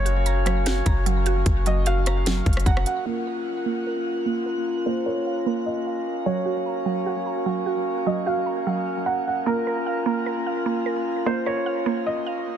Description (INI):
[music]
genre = hip hop, atmospheric cloud-rap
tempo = 150 BPM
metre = 4/4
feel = half-time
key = Bb minor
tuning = A4 = 438 Hz
[part]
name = felt-muted upright piano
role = melody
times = 0.0-12.6 s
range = Bb4 to Gb5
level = -29 LUFS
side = equal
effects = low-pass filter, ping-pong delay
[part]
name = dark woodwind section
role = sustained chords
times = 0.0-12.6 s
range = Bb3 to Gb4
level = -27 LUFS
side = equal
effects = sidechain pumping, low-pass filter
[part]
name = mallet-like synth pluck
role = arpeggios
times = 0.0-12.6 s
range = Gb3 to Bb5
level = -28 LUFS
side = right 6 dB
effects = chorus, low-pass filter, ping-pong delay
[part]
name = clean 808-style bass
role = bass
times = 0.0-2.9 s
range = Gb1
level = -22 LUFS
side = left 1 dB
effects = none
[part]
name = trap drum kit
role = drums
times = 0.1-3.0 s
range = hi-hat, kick drum, rim click, snare drum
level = -24 LUFS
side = equal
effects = none
[sound]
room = little or no reverb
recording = dense, heavily limited modern master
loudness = -22 LUFS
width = side -9 dB against mid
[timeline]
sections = 0.0-3.1 A section; 3.1-12.6 B section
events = none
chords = 0.0 Gb; 3.1 Bbm; 6.3 Gb; 9.5 Bbm